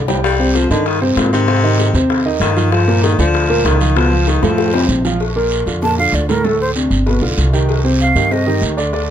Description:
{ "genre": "Afro-Cuban jazz", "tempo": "193 BPM", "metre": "4/4", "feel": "straight", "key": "Bb major from 5.2 s", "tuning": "A4 = 440 Hz", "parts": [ { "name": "warm grand piano", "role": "accompaniment", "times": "0.0-9.1 s", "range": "A2 to G5", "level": "-17 LUFS", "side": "right 1 dB", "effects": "none" }, { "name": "upright bass", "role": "bass", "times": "0.0-9.1 s", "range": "G1 to Ab2", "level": "-17 LUFS", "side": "equal", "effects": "none" }, { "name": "bongos and cowbell", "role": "percussion", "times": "0.1-9.1 s", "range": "none", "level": "-23 LUFS", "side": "left 7 dB", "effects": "none" }, { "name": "guiro", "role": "percussion", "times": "0.1-9.1 s", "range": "none", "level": "-27 LUFS", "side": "right 6 dB", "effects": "none" }, { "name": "warm baritone saxophone", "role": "second line", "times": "0.2-4.9 s", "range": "G2 to G3", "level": "-18 LUFS", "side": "left 5 dB", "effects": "none" }, { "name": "breathy jazz flute", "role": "melody", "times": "5.8-8.6 s", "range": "A4 to A5", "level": "-17 LUFS", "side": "right 2 dB", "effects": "none" } ], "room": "little or no reverb", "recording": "close, detailed microphones", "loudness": "-12 LUFS", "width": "side -10 dB against mid", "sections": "0.0-5.2 A section; 5.2-9.1 A section", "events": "drum fill 0.0, 4.4-5.2; baritone saxophone solo 0.0-5.2; flute solo 5.2-9.1", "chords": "0.2 Cm; 1.5 Ab6; 2.7 Gm7; 4.0 Db7; 4.6 F; 5.2 Bbmaj7; 6.4 D5; 7.1 G7; 7.7 Cm" }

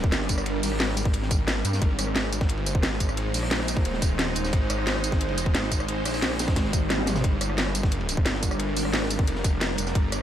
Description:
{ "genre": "dark technical drum and bass", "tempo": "177 BPM", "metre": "4/4", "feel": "straight", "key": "G phrygian", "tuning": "A4 = 440 Hz", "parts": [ { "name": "swarming drone", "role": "sustained chords", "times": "0.0-10.2 s", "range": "G3 to C5", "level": "-31 LUFS", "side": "right 1 dB", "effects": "built-in reverb, sidechain pumping" }, { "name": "wide detuned saw bass", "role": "bass", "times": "0.0-10.2 s", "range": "Eb1 to G2", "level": "-28 LUFS", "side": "equal", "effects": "chorus, tube saturation" }, { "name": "electronic kick drum", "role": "drums", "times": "0.0-10.0 s", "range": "none", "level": "-24 LUFS", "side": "equal", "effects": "overdrive" }, { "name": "crunchy breakbeat drum kit", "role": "drums", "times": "0.1-10.2 s", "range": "hi-hat, ride cymbal, snare drum", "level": "-36 LUFS", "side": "equal", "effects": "high-pass filter on cymbals, high-pass filter on hats, high-pass filter on snare, high-pass filter on room" }, { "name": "drum and bass drum kit", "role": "drums", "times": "0.1-10.2 s", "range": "hi-hat, rim click, snare drum, tambourine, toms", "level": "-28 LUFS", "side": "equal", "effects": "none" }, { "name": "swell", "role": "sound effects", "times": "6.7-7.2 s", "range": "none", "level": "-36 LUFS", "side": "right 1 dB", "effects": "none" } ], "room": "light reverb", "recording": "none", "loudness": "-22 LUFS", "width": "side -10 dB against mid", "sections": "0.0-10.2 A section", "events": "swell 6.7-7.2; drum fill 6.9-7.2", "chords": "0.0 Gm; 1.8 Ab; 7.2 Gm" }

